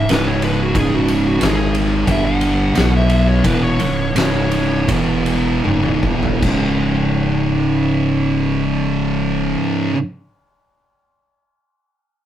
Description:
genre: stoner and doom metal.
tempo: 75-91 BPM.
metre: 4/4.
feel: straight.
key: C# phrygian.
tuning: A4 = 439 Hz.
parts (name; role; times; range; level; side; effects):
fuzz lead guitar; melody; 0.0-4.9 s; F#4 to F#5; -23 LUFS; left 2 dB; distortion, tape echo.
thick fuzz guitar; riff; 0.0-9.9 s; C#2 to B3; -20 LUFS; left 5 dB; distortion.
thick fuzz guitar; riff; 0.0-10.0 s; C#2 to B3; -18 LUFS; right 4 dB; distortion.
pure sine sub bass; bass; 0.0-9.5 s; C#1 to B1; -24 LUFS; equal; overdrive.
oversized low-tuned drum kit; drums; 0.1-6.6 s; crash cymbal, kick drum, ride cymbal, snare drum, toms; -21 LUFS; equal; none.
room: light reverb.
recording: rough rehearsal-room recording, tube saturation.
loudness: -14 LUFS.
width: side -11 dB against mid.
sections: 0.0-6.4 A section; 6.4-9.6 B section.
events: lead electric guitar solo 0.0-6.4; slowing down 0.7-6.4; drum fill 5.6-6.4.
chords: 0.0 C#5; 1.4 G#5; 2.1 G5; 2.8 B5; 3.4 C#m; 4.9 E5; 5.6 C#m; 6.4 C#5.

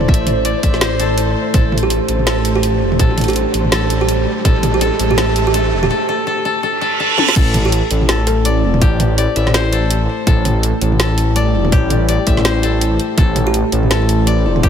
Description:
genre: half-time drum and bass.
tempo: 165 BPM.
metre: 4/4.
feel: swing 59% on 16ths, half-time.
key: A minor.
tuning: A4 = 440 Hz.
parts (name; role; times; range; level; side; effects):
deep dark ambient pad; sustained chords; 0.0-14.7 s; A3 to C5; -23 LUFS; left 1 dB; chorus, built-in reverb, sidechain pumping.
koto; arpeggios; 0.0-14.7 s; G4 to E5; -21 LUFS; left 4 dB; ping-pong delay.
dark detuned saw bass; bass; 0.0-14.7 s; E1 to A1; -17 LUFS; equal; none.
drum and bass drum kit; drums; 0.0-14.7 s; crash cymbal, hi-hat, snare drum, toms; -19 LUFS; equal; none.
riser and reverse cymbal; sound effects; 1.4-7.4 s; none; -24 LUFS; right 4 dB; none.
pulsing gated texture; texture; 0.0-5.9 s; C5; -25 LUFS; right 3 dB; chorus, built-in reverb.
electronic kick drum; drums; 0.1-4.5, 7.4-14.7 s; none; -13 LUFS; equal; none.
kalimba; melody; 1.8-8.6, 13.5-13.7 s; G4 to A4; -21 LUFS; right 5 dB; low-pass filter, ping-pong delay.
room: light reverb.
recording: none.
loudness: -12 LUFS.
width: side -8 dB against mid.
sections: 0.0-7.4 A section; 7.4-14.7 B section.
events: build-up 0.0-7.4; riser 1.4-5.9; reverse cymbal 6.8-7.4; drum fill 7.2; drop 7.4-14.7.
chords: 0.0 Am.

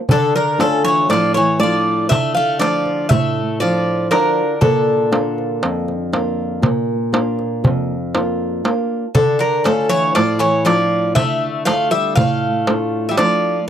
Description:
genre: greek folk, Greek bouzouki band.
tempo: 119 BPM (eighths).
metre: 9/8.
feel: straight.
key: unclear.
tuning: A4 = 440 Hz.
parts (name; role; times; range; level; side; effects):
Greek bouzouki; melody; 0.1-13.6 s; A4 to F5; -17 LUFS; equal; none.
Greek bouzouki; second line; 0.1-13.7 s; C#3 to A3; -23 LUFS; left 3 dB; none.
flamenco guitar; accompaniment; 0.1-13.6 s; F2 to F4; -20 LUFS; equal; none.
darbuka; percussion; 0.1-13.4 s; none; -19 LUFS; right 1 dB; none.
room: light reverb.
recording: dry, close 1970s-style studio recording.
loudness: -14 LUFS.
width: side -9 dB against mid.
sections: 0.1-13.7 A section.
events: none.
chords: 0.1 Dm; 4.6 Bb; 9.1 Dm.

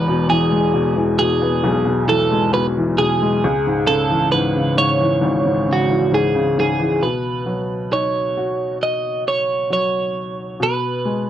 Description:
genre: pop.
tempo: 67 BPM.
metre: 4/4.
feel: straight.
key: unclear.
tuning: A4 = 440 Hz.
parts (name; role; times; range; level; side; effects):
twelve-string electric guitar; melody; 0.0-11.3 s; F#4 to D#5; -19 LUFS; right 3 dB; slapback echo.
clear upright piano; accompaniment; 0.0-11.3 s; E1 to F#4; -19 LUFS; left 2 dB; none.
room: little or no reverb.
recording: dry, close 1970s-style studio recording.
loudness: -16 LUFS.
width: side -11 dB against mid.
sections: 0.0-7.0 A section; 7.0-11.3 B section.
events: none.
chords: 0.0 E; 3.4 C#m; 7.0 Badd9; 10.6 G#m/B.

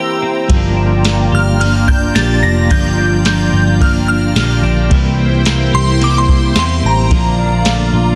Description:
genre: dream pop.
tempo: 109 BPM.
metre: 4/4.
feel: straight.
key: unclear.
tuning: A4 = 440 Hz.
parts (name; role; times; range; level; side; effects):
shimmering bell with halo; melody; 0.0-8.2 s; Bb5 to Bb6; -21 LUFS; equal; ensemble chorus, digital delay.
lush unison pad; sustained chords; 0.0-8.2 s; E4 to Bb5; -23 LUFS; equal; chorus, phaser.
twelve-string electric guitar; arpeggios; 0.0-8.2 s; E3 to G4; -21 LUFS; equal; subtle chorus, digital delay.
clean electric guitar; accompaniment; 0.5-8.2 s; G2 to E4; -22 LUFS; equal; tremolo, subtle chorus.
vintage muted picked electric bass; bass; 0.5-8.2 s; F1 to E2; -17 LUFS; equal; none.
soft vintage rhythm box; drums; 0.5-7.8 s; kick drum, ride cymbal, snare drum, tambourine; -18 LUFS; equal; none.
room: light reverb, digital ambience.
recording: dense, heavily limited modern master.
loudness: -13 LUFS.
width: mono.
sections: 0.0-8.2 A section.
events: none.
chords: 0.0 C7; 0.5 Gm7; 4.9 C7; 7.1 Bbmaj7.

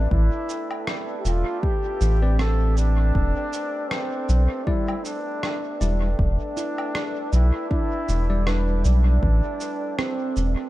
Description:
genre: ambient dub.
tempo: 79 BPM.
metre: 4/4.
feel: swing 56% on 16ths.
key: A minor.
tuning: A4 = 440 Hz.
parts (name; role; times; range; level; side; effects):
warm trombone; melody; 0.0-10.5 s; C4 to A4; -29 LUFS; equal; dub echo.
deep dark ambient pad; sustained chords; 0.0-10.7 s; A4 to G5; -34 LUFS; equal; chorus, built-in reverb.
handpan; arpeggios; 0.0-10.7 s; C4 to D5; -33 LUFS; right 6 dB; dub echo.
round analog bass; bass; 0.0-10.6 s; E1 to B1; -19 LUFS; equal; none.
electronic kick drum; drums; 0.1-9.4 s; none; -24 LUFS; equal; overdrive.
electronic shaker, woodblock and rim click; drums; 0.5-10.5 s; none; -34 LUFS; equal; dub echo.
tine electric piano; stabs; 2.2-9.2 s; G3 to D5; -34 LUFS; left 2 dB; dub echo.
room: little or no reverb.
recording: echo-heavy mix.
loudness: -20 LUFS.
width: side -16 dB against mid.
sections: 0.0-10.7 A section.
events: none.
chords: 0.0 Am11.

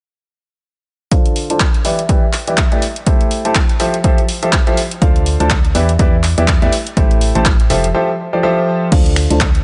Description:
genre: piano house.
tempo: 123 BPM.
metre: 4/4.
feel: swing 58% on 16ths.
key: D dorian.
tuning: A4 = 440 Hz.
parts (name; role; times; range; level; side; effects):
clear grand piano; riff; 1.1-9.4 s; D3 to A5; -19 LUFS; equal; sidechain pumping, low-pass filter.
electronic kick drum; drums; 1.1-9.5 s; none; -16 LUFS; equal; overdrive.
punchy analog drum machine; drums; 1.1-9.6 s; crash cymbal, finger snaps, handclaps, hi-hat; -22 LUFS; equal; overdrive.
solid FM bass; bass; 5.0-9.6 s; F1 to E2; -18 LUFS; equal; tube saturation, sidechain pumping.
room: light reverb, digital ambience.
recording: nothing above 10.7 kHz.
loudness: -14 LUFS.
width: mono.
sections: 1.1-8.9 A section.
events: filter sweep on grand piano 1.1-8.9; break 7.9-8.9.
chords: 1.1 Dm7; 1.8 Em7; 2.8 Am7; 3.8 Fmaj9; 5.0 Dm7; 5.7 Em7; 6.7 Am7; 7.7 Fmaj9; 8.9 Dm7.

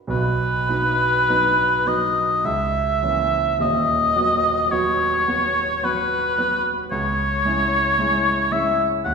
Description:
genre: classical, romantic duo for oboe and grand piano.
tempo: 50-57 BPM.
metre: 3/4.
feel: rubato.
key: B major.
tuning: A4 = 440 Hz.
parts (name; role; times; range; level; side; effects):
warm grand piano; accompaniment; 0.0-9.1 s; D#1 to F#4; -24 LUFS; right 2 dB; none.
warm oboe; melody; 0.1-9.1 s; B4 to Gb5; -19 LUFS; left 1 dB; none.
room: wet recital hall reverb, RT60 1.8 s.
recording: recorded in a church or concert hall.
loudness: -17 LUFS.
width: side -5 dB against mid.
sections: 0.1-9.1 A section.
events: none.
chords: 0.1 B; 2.5 A#dim/C#; 3.6 B/D#; 6.9 C#m.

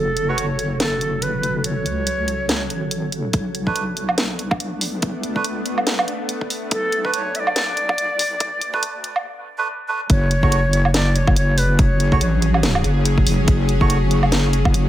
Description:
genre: deep dubstep.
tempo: 142 BPM.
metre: 4/4.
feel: swing 57% on 16ths, half-time.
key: F# minor.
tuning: A4 = 441 Hz.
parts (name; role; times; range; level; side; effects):
breathy bright ney; melody; 0.0-3.1, 6.7-12.6 s; A4 to E5; -24 LUFS; equal; low-pass filter, dub echo.
bowed-like drone; sustained chords; 0.0-14.9 s; C#3 to A4; -27 LUFS; equal; built-in reverb.
wobble bass; bass; 0.0-14.9 s; F#1 to D2; -21 LUFS; equal; chorus.
garage drum kit; drums; 0.2-14.8 s; hi-hat, snare drum, woodblock; -22 LUFS; right 1 dB; studio reverb.
melodica; stabs; 0.3-0.5, 3.7-14.0 s; A3 to C#5; -26 LUFS; right 5 dB; low-pass filter, dub echo.
electronic kick drum; drums; 3.3-14.7 s; none; -18 LUFS; equal; studio reverb.
room: moderate spring reverb, RT60 1.2 s, digital ambience.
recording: high-pass filter.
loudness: -17 LUFS.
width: side -13 dB against mid.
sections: 0.0-10.1 A section; 10.1-14.9 B section.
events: build-up 0.0-10.1; filter sweep on melodica 0.0-10.1; filter sweep on synth drone 0.0-10.1; filter sweep on ney 0.0-10.1; filter sweep 0.0-10.1; drop 10.1-14.9.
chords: 0.0 F#m; 3.3 Bm7; 10.1 F#m.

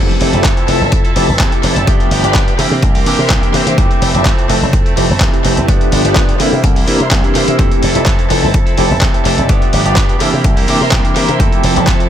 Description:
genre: filtered disco house.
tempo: 126 BPM.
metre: 4/4.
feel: straight.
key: F major.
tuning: A4 = 440 Hz.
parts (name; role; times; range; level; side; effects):
overdriven tine electric piano; accompaniment; 0.0-11.9 s; E3 to A4; -17 LUFS; equal; fast tremolo, phaser, sidechain pumping, analog delay.
string machine, full ensemble; sustained chords; 0.0-12.1 s; F3 to C6; -21 LUFS; right 1 dB; phaser, ensemble chorus, vintage 12-bit sampler grit, sidechain pumping.
direct-recorded clean electric guitar; riff; 0.0-12.1 s; E3 to A4; -21 LUFS; right 6 dB; sidechain pumping, analog delay.
slap bass with an envelope filter; bass; 0.0-12.1 s; F1 to C3; -17 LUFS; equal; sidechain pumping.
dusty soul sampler-style drum kit; drums; 0.1-12.1 s; handclaps, hi-hat; -19 LUFS; left 1 dB; overdrive, sidechain pumping on hats, sidechain pumping on cymbals, analog delay.
electronic kick drum; drums; 0.4-12.0 s; none; -13 LUFS; equal; none.
room: little or no reverb.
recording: echo-heavy mix.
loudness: -10 LUFS.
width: side -10 dB against mid.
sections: 0.0-12.1 A section.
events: none.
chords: 0.0 Fmaj7; 1.9 G7; 2.6 C7; 3.8 Fmaj7; 5.7 G7; 6.4 C7; 7.6 Fmaj7; 9.5 G7; 10.2 C7; 11.4 Fmaj7.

